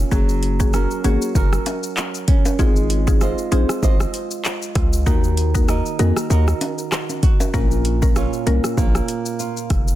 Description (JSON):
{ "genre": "dancehall", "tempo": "97 BPM", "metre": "4/4", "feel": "swing 56% on 16ths", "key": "Bb minor", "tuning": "A4 = 440 Hz", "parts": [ { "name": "flamenco guitar", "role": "arpeggios", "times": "0.0-10.0 s", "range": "Bb2 to Eb5", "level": "-26 LUFS", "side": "right 7 dB", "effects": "ping-pong delay" }, { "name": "hard-hitting 808-style bass", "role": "bass", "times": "0.0-9.9 s", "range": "F1 to F2", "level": "-19 LUFS", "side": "equal", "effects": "none" }, { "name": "mallet-like synth pluck", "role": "accompaniment", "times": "0.1-8.7 s", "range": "Bb3 to Bb4", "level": "-24 LUFS", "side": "left 2 dB", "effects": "chorus" }, { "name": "afro-pop drum kit", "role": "drums", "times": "0.1-10.0 s", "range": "handclaps, hi-hat, kick drum, rim click, shaker", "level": "-19 LUFS", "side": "equal", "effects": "soft clipping on snare" }, { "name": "tube shaker and timbales", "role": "percussion", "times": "0.1-10.0 s", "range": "none", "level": "-32 LUFS", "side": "left 2 dB", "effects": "none" } ], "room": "digital ambience", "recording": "dense, heavily limited modern master", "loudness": "-16 LUFS", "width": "side -14 dB against mid", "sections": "0.0-7.5 A section; 7.5-10.0 B section", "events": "none", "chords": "0.1 Gbadd9; 2.6 Ab6; 5.1 Ebm; 7.5 Bbm" }